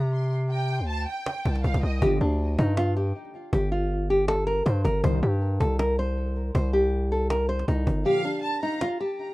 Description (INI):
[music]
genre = hip hop, trap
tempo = 159 BPM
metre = 4/4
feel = half-time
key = G minor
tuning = A4 = 440 Hz
[part]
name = distorted 808-style bass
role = bass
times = 0.0-8.1 s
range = G1 to C3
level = -25 LUFS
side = equal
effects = distortion
[part]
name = cajon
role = drums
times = 0.1-9.3 s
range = none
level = -30 LUFS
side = equal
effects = none
[part]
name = warm studio violin section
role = second line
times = 0.5-2.0, 8.1-8.8 s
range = Eb5 to Bb5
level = -33 LUFS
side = right 2 dB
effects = digital delay
[part]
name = nylon-string guitar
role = melody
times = 2.0-9.3 s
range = D4 to C5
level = -26 LUFS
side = equal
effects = low-pass filter
[part]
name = mellow synth brass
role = stabs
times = 2.0-2.2, 5.0-5.2, 8.1-8.2 s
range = G2 to F3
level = -35 LUFS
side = left 1 dB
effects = chorus, phaser, digital delay
[sound]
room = little or no reverb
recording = rough home demo mix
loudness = -23 LUFS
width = side -19 dB against mid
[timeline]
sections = 0.0-2.0 A section; 2.0-9.3 B section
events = break 0.0-2.0; kick muted 8.1-8.8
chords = 0.0 Csus2; 2.0 G5; 5.0 C5; 8.1 Gm7